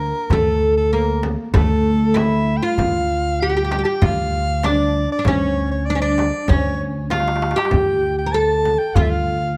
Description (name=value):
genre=Arabic maqam ensemble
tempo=97 BPM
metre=4/4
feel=straight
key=D maqam nahawand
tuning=A4 = 438 Hz
part: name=oud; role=melody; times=0.0-9.6 s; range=A3 to Bb4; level=-22 LUFS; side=equal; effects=none
part: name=clear soprano saxophone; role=second line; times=0.0-9.6 s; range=A4 to A5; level=-26 LUFS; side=equal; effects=none
part: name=upright bass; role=bass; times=0.0-9.6 s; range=D2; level=-24 LUFS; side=equal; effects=none
part: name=darbuka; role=percussion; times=0.2-9.5 s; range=none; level=-26 LUFS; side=equal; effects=none
part: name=frame drum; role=percussion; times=0.3-9.1 s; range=none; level=-28 LUFS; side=equal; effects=none
room=light reverb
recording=close, detailed microphones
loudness=-18 LUFS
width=mono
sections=0.0-9.6 A section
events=drum fill 7.1-7.7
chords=none